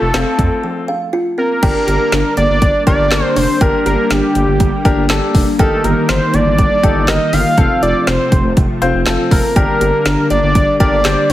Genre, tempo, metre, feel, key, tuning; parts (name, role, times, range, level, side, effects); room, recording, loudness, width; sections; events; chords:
synth-pop; 121 BPM; 4/4; straight; G minor; A4 = 440 Hz
fat analog lead; melody; 0.0-11.3 s; G4 to F5; -16 LUFS; equal; digital delay
kalimba; arpeggios; 0.0-11.3 s; F3 to G5; -21 LUFS; right 1 dB; digital delay
round analog bass; bass; 0.0-11.3 s; F1 to F2; -18 LUFS; equal
noise sweep; sound effects; 0.0-0.6 s; -34 LUFS; left 2 dB
clear baby grand piano; accompaniment; 0.1-11.3 s; C4 to C5; -20 LUFS; left 4 dB
deep house drum kit; drums; 0.1-11.3 s; crash cymbal, handclaps, hi-hat, kick drum, snare drum; -16 LUFS; equal
ensemble organ-string; sustained chords; 1.6-11.3 s; C3 to Bb3; -20 LUFS; left 1 dB; ensemble chorus
moderate digital room reverb, RT60 1.0 s; heavily compressed radio sound; -11 LUFS; side -14 dB against mid
0.0-1.6 A section; 1.6-11.3 B section
noise sweep 0.0-1.6; break 0.6-1.6
0.0 F; 1.6 Gm; 5.6 Eb/G; 7.6 F; 9.6 Gm